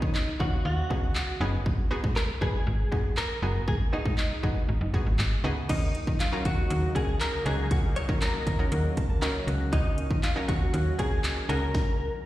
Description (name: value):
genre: dance-pop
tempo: 119 BPM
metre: 4/4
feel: straight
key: Eb minor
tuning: A4 = 440 Hz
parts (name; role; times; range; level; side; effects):
- direct-recorded clean electric guitar; melody; 0.0-12.3 s; D#4 to Db5; -33 LUFS; equal; ensemble chorus, ping-pong delay, slapback echo
- analog pluck; accompaniment; 0.0-11.7 s; B3 to Db5; -35 LUFS; equal; chorus, sidechain pumping, slapback echo
- slap-like FM bass; bass; 0.0-11.7 s; F#1 to D#3; -28 LUFS; equal; sidechain pumping
- house drum kit; drums; 0.0-11.9 s; crash cymbal, handclaps, hi-hat, kick drum, snare drum; -28 LUFS; equal; none
- sweeping resonant pad; sustained chords; 5.7-11.7 s; Db3 to Eb4; -37 LUFS; equal; chorus, sidechain pumping
- kora; arpeggios; 5.7-12.3 s; Eb3 to A5; -41 LUFS; left 1 dB; sidechain pumping, ping-pong delay, slapback echo
room: little or no reverb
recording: live gig heard through the venue's PA, recital hall reverb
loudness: -25 LUFS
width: side -15 dB against mid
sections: 0.0-5.7 A section; 5.7-12.3 B section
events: none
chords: 0.0 B69; 1.7 Abm7; 5.7 Ebm7